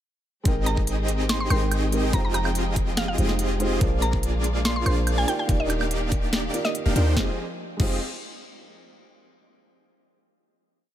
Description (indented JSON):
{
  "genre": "future bass",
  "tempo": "143 BPM",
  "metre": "4/4",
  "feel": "half-time",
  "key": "F dorian",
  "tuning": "A4 = 439 Hz",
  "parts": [
    { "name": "felt-muted upright piano", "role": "accompaniment", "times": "0.4-8.0 s", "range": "Eb3 to G5", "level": "-30 LUFS", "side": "right 1 dB", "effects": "vintage 12-bit sampler grit, sidechain pumping, tape echo" },
    { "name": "clear studio string section", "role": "sustained chords", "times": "0.5-7.4 s", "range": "Eb3 to G5", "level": "-36 LUFS", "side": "right 1 dB", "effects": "sidechain pumping" },
    { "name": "supersaw chords", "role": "riff", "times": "0.5-8.0 s", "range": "Bb3 to F5", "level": "-29 LUFS", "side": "right 1 dB", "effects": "sidechain pumping" },
    { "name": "warm 808-style bass", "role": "bass", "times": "0.5-8.0 s", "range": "Eb1 to Eb2", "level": "-25 LUFS", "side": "equal", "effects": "sidechain pumping" },
    { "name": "electronic kick drum", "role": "drums", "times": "0.5-7.9 s", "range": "none", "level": "-25 LUFS", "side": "equal", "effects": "overdrive" },
    { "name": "trap drum kit", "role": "drums", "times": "0.5-7.9 s", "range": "crash cymbal, hi-hat, snare drum, woodblock", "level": "-29 LUFS", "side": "equal", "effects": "overdrive" },
    { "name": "mallet-like synth pluck", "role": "melody", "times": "0.7-7.2 s", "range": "Eb5 to C6", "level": "-32 LUFS", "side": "equal", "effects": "chorus, cassette tape, sidechain pumping, tape echo" }
  ],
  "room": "little or no reverb",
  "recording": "none",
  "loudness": "-21 LUFS",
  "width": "side -11 dB against mid",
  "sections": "0.5-7.2 drop; 7.2-8.8 final chord",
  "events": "drop 0.5-7.2",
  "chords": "0.5 Abmaj7; 2.1 Fm9; 3.8 Bb7; 5.3 Ebmaj7; 7.2 Fm9"
}